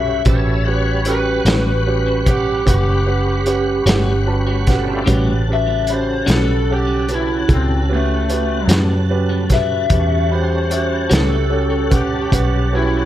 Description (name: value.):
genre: slow blues.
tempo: 50 BPM (dotted quarters).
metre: 12/8.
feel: straight.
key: A mixolydian.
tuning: A4 = 441 Hz.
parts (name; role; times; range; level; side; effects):
lead guitar through a small cranked amp; melody; 0.0-13.1 s; A3 to E5; -21 LUFS; left 2 dB; overdrive.
warm concert grand piano; accompaniment; 0.0-13.0 s; C#4 to B5; -22 LUFS; right 4 dB; tape echo.
tonewheel organ; sustained chords; 0.0-13.1 s; C#3 to F#5; -25 LUFS; equal; slow rotary speaker, chorus vibrato.
vintage muted fingered electric bass; bass; 0.0-13.1 s; F#1 to F#2; -19 LUFS; equal; none.
crunchy breakbeat drum kit; drums; 0.2-12.5 s; hi-hat, kick drum, snare drum; -19 LUFS; equal; none.
clean electric guitar; accompaniment; 1.5-11.4 s; A2 to F#4; -25 LUFS; left 2 dB; harmonic tremolo, tape echo.
room: studio reverb.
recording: echo-heavy mix.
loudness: -14 LUFS.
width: side -12 dB against mid.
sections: 0.0-5.1 A section; 5.1-13.1 B section.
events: grand piano fill 3.9-5.1; lead electric guitar solo 5.1-13.1.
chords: 0.0 A13.